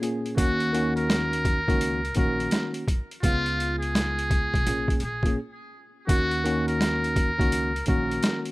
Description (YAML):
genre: hip hop, boom-bap hip-hop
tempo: 84 BPM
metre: 4/4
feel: swing 63% on 16ths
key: Eb minor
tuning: A4 = 439 Hz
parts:
  - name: tine electric piano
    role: accompaniment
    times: 0.0-8.5 s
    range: Bb2 to Ab4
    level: -28 LUFS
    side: equal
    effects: medium stereo tremolo, high-pass filter, low-pass filter
  - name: boom bap sampler-style drum kit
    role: drums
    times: 0.0-8.5 s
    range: hi-hat, kick drum, snare drum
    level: -25 LUFS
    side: equal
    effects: overdrive
  - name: trumpet with metal mute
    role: melody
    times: 0.4-8.4 s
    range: F4 to Bb4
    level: -28 LUFS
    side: equal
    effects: high-pass filter, low-pass filter
  - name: upright bass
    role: bass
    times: 0.4-8.2 s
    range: Bb1 to Eb2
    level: -31 LUFS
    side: equal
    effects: none
room: small room ambience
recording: rough home demo mix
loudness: -22 LUFS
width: side -20 dB against mid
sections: 0.0-8.5 A section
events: break 5.4-6.1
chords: 0.4 Ebm7; 3.2 Db7; 4.7 Bbm7; 6.1 Ebm7